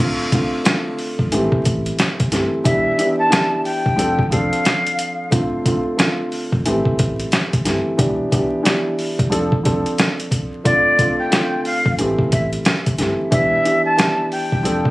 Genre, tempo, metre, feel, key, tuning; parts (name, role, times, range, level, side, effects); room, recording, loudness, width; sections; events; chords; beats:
hip hop, boom-bap hip-hop; 90 BPM; 4/4; swing 62% on 16ths; D dorian; A4 = 440 Hz
dark upright piano; accompaniment; 0.0-14.9 s; D3 to A4; -20 LUFS; equal; high-pass filter, low-pass filter
sub bass with octave; bass; 0.0-14.9 s; D1 to A1; -26 LUFS; equal
boom bap sampler-style drum kit; drums; 0.3-14.9 s; hi-hat, kick drum, snare drum; -19 LUFS; equal
breathy jazz flute; melody; 2.6-5.3, 10.6-14.9 s; D5 to A5; -19 LUFS; left 1 dB; high-pass filter, low-pass filter, digital delay
light reverb; recorded on a phone in the room, studio reverb, vinyl crackle, compression; -16 LUFS; side -19 dB against mid
0.0-14.9 A section
break 0.0-2.7
0.0 Dm7; 1.3 Am7; 2.7 Em7; 4.0 F6; 5.3 Dm7; 6.7 Am7; 8.0 Em7; 9.3 F6; 10.7 Dm7; 12.0 Am7; 13.3 Em7
0.65 1.32 1.99 | 2.65 3.32 3.99 4.65 | 5.32 5.99 6.65 7.32 | 7.99 8.65 9.32 9.99 | 10.65 11.32 11.99 12.65 | 13.32 13.99 14.65